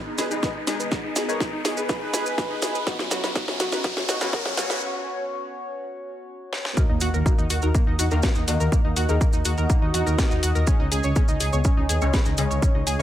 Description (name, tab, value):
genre	melodic techno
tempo	123 BPM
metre	4/4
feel	straight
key	unclear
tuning	A4 = 440 Hz
part	dark analog pad	sustained chords	0.0-13.0 s	B3 to D#6	-34 LUFS	left 1 dB	chorus, phaser, sidechain pumping
part	riser and impact	sound effects	0.0-8.7 s	none	-33 LUFS	equal	none
part	mellow synth brass	melody	0.1-13.0 s	F#3 to D#5	-31 LUFS	right 1 dB	chorus, cassette tape, sidechain pumping, digital delay
part	analog pluck	arpeggios	0.1-13.0 s	A#3 to C#6	-30 LUFS	equal	chorus, sidechain pumping, digital delay
part	house drum kit	drums	0.2-13.0 s	hi-hat, snare drum	-28 LUFS	left 1 dB	none
part	maracas	percussion	0.2-13.0 s	none	-32 LUFS	right 4 dB	none
part	synth brass stab	stabs	0.3-4.8, 8.1-13.0 s	C#3 to G#4	-32 LUFS	left 3 dB	chorus, phaser, sidechain pumping, digital delay
part	electronic kick drum	drums	0.4-12.7 s	none	-22 LUFS	equal	none
part	swelling detuned saw bass	bass	6.9-13.0 s	C#2 to E2	-24 LUFS	equal	sidechain pumping
room	light reverb, digital ambience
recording	high-pass filter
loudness	-20 LUFS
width	side -12 dB against mid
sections	0.0-6.8 A section; 6.8-13.0 B section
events	build-up 0.0-6.8; drum fill 0.0-4.8, 6.5; riser 0.0-4.8; break 4.8-6.8; drop 6.8-13.0; impact 6.8-8.7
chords	0.0 G#m; 2.9 F#sus4; 6.8 D#m; 10.7 C#sus2